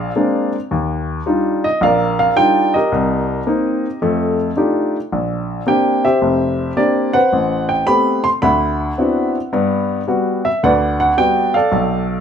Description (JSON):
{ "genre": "solo jazz", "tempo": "109 BPM", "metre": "4/4", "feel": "swing 67% on 8ths", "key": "unclear", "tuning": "A4 = 442 Hz", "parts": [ { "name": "warm upright piano", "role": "solo", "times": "0.0-12.2 s", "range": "F1 to C6", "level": "-14 LUFS", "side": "equal", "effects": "none" } ], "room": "light reverb", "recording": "minimal, uncompressed stereo recording", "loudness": "-14 LUFS", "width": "side -8 dB against mid", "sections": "0.0-12.2 A section", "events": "none", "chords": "0.0 Bb9; 0.7 Ebmaj9; 2.9 Cm7; 4.0 F13; 5.1 Bb69; 7.3 Am9; 8.4 D13; 9.5 Gmaj7", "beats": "0.16 | 0.71 1.26 1.81 2.36 | 2.91 3.46 4.01 4.57 | 5.12 5.67 6.22 6.77 | 7.32 7.87 8.42 8.97 | 9.52 10.07 10.62 11.17 | 11.72" }